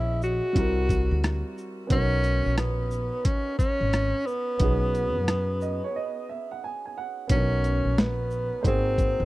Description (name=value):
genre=hip hop, jazz-hop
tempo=89 BPM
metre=4/4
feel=swing 65% on 16ths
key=B major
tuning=A4 = 440 Hz
part: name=warm tenor saxophone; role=melody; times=0.0-9.2 s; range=B3 to F#4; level=-28 LUFS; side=equal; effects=tape echo
part: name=warm upright piano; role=accompaniment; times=0.0-9.2 s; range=G3 to G#5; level=-32 LUFS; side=right 4 dB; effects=none
part: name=upright bass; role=bass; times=0.0-9.2 s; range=F#1 to F#2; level=-26 LUFS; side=equal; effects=none
part: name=boom bap sampler-style drum kit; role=drums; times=0.2-9.2 s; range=hi-hat, kick drum, rim click, shaker, snare drum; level=-25 LUFS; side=equal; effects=overdrive
room=small room ambience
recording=dry, close 1970s-style studio recording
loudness=-23 LUFS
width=side -18 dB against mid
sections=0.0-7.3 A section; 7.3-9.2 A section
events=upright piano fill 5.3-7.3; break 6.0-7.3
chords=0.0 C#m7; 0.6 C7#11; 1.9 Bmaj7; 8.6 G#7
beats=0.56 1.23 | 1.91 2.58 3.25 3.93 | 4.60 5.28 5.95 6.62 | 7.30 7.97 8.65